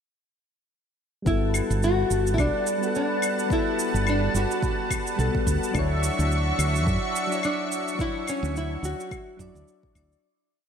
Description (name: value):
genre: sunset chillout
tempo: 107 BPM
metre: 4/4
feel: swing 57% on 16ths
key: G lydian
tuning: A4 = 441 Hz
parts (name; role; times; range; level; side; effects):
- soft electric-piano-like synth keys; accompaniment; 1.2-10.3 s; F#3 to D5; -30 LUFS; moving between left 6 dB and right 6 dB; chorus, tremolo, auto-pan, low-pass filter, digital delay
- nylon-string guitar; melody; 1.3-9.9 s; C#4 to F#4; -28 LUFS; left 1 dB; lush chorus, ping-pong delay
- lush unison pad; sustained chords; 1.3-10.2 s; G3 to C#6; -29 LUFS; equal; chorus
- woody fretless electric bass; bass; 1.3-10.1 s; G1 to F#2; -25 LUFS; right 1 dB; none
- cabasa and claves; drums; 1.3-10.2 s; none; -34 LUFS; equal; none
- electronic kick drum; drums; 1.3-10.1 s; none; -28 LUFS; right 1 dB; none
room: moderate lush hall reverb, RT60 2.8 s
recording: bright 1980s-style digital production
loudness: -22 LUFS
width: side -7 dB against mid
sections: 1.3-10.2 groove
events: filter sweep on synth keys 1.3-10.2; fade-out 7.2-10.2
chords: 1.3 Gmaj9; 5.7 Dmaj9